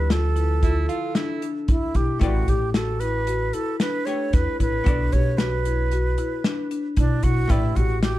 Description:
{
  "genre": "progressive instrumental, band music in an uneven meter",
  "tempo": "114 BPM",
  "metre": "5/4",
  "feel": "straight",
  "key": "A mixolydian",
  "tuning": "A4 = 440 Hz",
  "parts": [
    { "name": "bright wooden flute", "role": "melody", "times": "0.0-8.2 s", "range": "D4 to C#5", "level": "-27 LUFS", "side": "right 4 dB", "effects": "plate reverb, digital delay" },
    { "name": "archtop guitar, miked and amplified", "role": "accompaniment", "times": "0.0-8.2 s", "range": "D3 to E5", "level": "-35 LUFS", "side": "left 6 dB", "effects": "plate reverb" },
    { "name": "marimba with soft mallets", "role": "arpeggios", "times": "0.0-8.2 s", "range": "D4 to G4", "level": "-29 LUFS", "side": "left 5 dB", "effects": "plate reverb" },
    { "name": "upright bass", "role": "bass", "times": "0.0-8.2 s", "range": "A1 to E2", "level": "-23 LUFS", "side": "equal", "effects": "none" },
    { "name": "warm soul drum kit", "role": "drums", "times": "0.1-8.2 s", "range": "hi-hat, kick drum, snare drum", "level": "-22 LUFS", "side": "equal", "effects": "none" },
    { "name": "breathy alto saxophone", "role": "second line", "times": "0.6-1.6 s", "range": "E4 to F4", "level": "-30 LUFS", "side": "right 5 dB", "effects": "plate reverb" }
  ],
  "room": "light reverb",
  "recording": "dark, warm production",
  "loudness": "-20 LUFS",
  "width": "side -15 dB against mid",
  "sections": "0.0-8.2 A section",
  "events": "none",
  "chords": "0.0 Dmadd9; 2.2 A9sus4; 4.9 Bm7; 7.5 A9sus4"
}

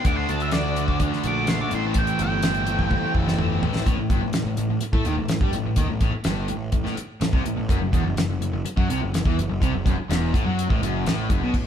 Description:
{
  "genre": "classic rock",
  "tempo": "126 BPM",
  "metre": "4/4",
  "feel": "straight",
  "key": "A dorian",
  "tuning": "A4 = 438 Hz",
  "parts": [
    { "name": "octave-fuzz lead guitar", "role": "melody", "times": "0.0-3.1 s", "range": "D5 to D6", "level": "-28 LUFS", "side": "right 2 dB", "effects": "distortion" },
    { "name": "crunchy overdriven guitar", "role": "riff", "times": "0.0-11.5 s", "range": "E2 to D4", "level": "-29 LUFS", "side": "right 5 dB", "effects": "none" },
    { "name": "fuzz guitar", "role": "riff", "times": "0.0-3.6, 7.7-11.5 s", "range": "E2 to D4", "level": "-33 LUFS", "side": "equal", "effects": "none" },
    { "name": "overdriven electric guitar", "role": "riff", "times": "0.0-11.5 s", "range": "E2 to A4", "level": "-29 LUFS", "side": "left 6 dB", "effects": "none" },
    { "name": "fuzz picked electric bass", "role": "bass", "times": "0.0-11.6 s", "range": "E1 to A2", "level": "-27 LUFS", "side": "equal", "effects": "overdrive" },
    { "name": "damped 70s drum kit", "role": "drums", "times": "0.0-11.6 s", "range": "crash cymbal, hi-hat, kick drum, snare drum, toms", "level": "-24 LUFS", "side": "equal", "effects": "none" }
  ],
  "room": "moderate stone room reverb, RT60 1.3 s",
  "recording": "band playing live in one room",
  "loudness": "-20 LUFS",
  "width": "side -9 dB against mid",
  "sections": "0.0-3.9 A section; 3.9-11.5 B section",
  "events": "lead electric guitar solo 0.0-3.9; drum fill 2.9-3.9",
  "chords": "0.1 D; 1.7 Am7; 3.9 N.C.; 7.7 Am6/E"
}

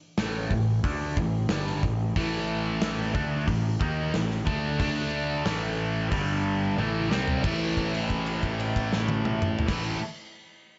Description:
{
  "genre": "hard rock",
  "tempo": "91 BPM",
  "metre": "4/4",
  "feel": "straight",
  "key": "unclear",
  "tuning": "A4 = 440 Hz",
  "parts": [
    { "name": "cranked stack guitar", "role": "riff", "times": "0.2-10.0 s", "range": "G2 to D#4", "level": "-31 LUFS", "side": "equal", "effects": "overdrive, phaser" },
    { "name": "fuzz picked electric bass", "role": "bass", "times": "0.2-10.0 s", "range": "G1 to D#2", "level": "-34 LUFS", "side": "equal", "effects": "overdrive" },
    { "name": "gated 80s drum kit", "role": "drums", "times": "0.2-9.8 s", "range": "crash cymbal, hi-hat, kick drum, snare drum, toms", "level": "-33 LUFS", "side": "equal", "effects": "none" },
    { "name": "scooped high-gain guitar", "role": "riff", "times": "2.2-10.0 s", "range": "G2 to D#4", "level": "-35 LUFS", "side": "equal", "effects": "distortion" }
  ],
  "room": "studio reverb",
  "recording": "nothing above 7.8 kHz",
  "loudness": "-27 LUFS",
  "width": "mono",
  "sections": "0.0-7.4 A section; 7.4-10.1 B section",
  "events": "drum fill 6.8-7.4; held note 7.4-9.7",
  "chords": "0.0 A5; 4.8 D5; 5.5 A5; 6.1 G5; 6.8 A5"
}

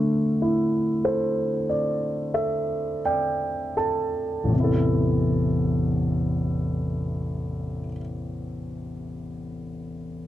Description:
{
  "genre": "folk",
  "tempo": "39-50 BPM",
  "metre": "4/4",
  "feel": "straight",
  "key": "A minor",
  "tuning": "A4 = 444 Hz",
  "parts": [
    { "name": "dark baby grand piano", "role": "melody", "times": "0.0-10.3 s", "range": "A1 to A5", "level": "-23 LUFS", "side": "equal", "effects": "none" }
  ],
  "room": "light reverb",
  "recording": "dry, close 1970s-style studio recording",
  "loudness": "-22 LUFS",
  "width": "side -13 dB against mid",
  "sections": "0.0-4.5 A section; 4.5-10.3 B section",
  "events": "slowing down 0.0-4.5; grand piano fill 0.4-4.5",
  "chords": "0.0 Dsus2; 4.5 Amadd9"
}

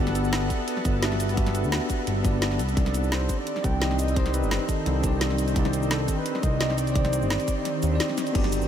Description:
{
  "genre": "liquid drum and bass",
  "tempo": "172 BPM",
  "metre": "4/4",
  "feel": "straight",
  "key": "unclear",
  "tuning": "A4 = 440 Hz",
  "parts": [
    { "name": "bell-like tine electric piano", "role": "accompaniment", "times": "0.0-8.7 s", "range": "B3 to F#5", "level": "-29 LUFS", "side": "equal", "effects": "fast stereo tremolo, ping-pong delay" },
    { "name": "shimmering ambient pad", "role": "sustained chords", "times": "0.0-8.7 s", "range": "Eb3 to F#5", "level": "-32 LUFS", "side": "equal", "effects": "chorus, built-in reverb" },
    { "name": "smooth synth bass", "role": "bass", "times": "0.0-8.7 s", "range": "G1 to Eb2", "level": "-26 LUFS", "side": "equal", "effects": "none" },
    { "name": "drum and bass drum kit", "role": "drums", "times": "0.1-8.7 s", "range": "crash cymbal, hi-hat, shaker, snare drum", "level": "-31 LUFS", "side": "equal", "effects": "none" },
    { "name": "electronic kick drum", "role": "drums", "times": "0.5-8.4 s", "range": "none", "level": "-26 LUFS", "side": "equal", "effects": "none" },
    { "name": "breathy flugelhorn", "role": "melody", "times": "3.1-8.0 s", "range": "A4 to G5", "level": "-34 LUFS", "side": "right 1 dB", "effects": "diffuse ambient delay" }
  ],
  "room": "moderate huge ambient reverb, RT60 4.7 s",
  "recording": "dreamy mix soaked in reverb",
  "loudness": "-22 LUFS",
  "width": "side -9 dB against mid",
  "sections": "0.0-8.7 A section",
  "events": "kick drops out 7.7-8.3",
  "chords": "0.0 Gmaj7; 2.6 Cmadd9"
}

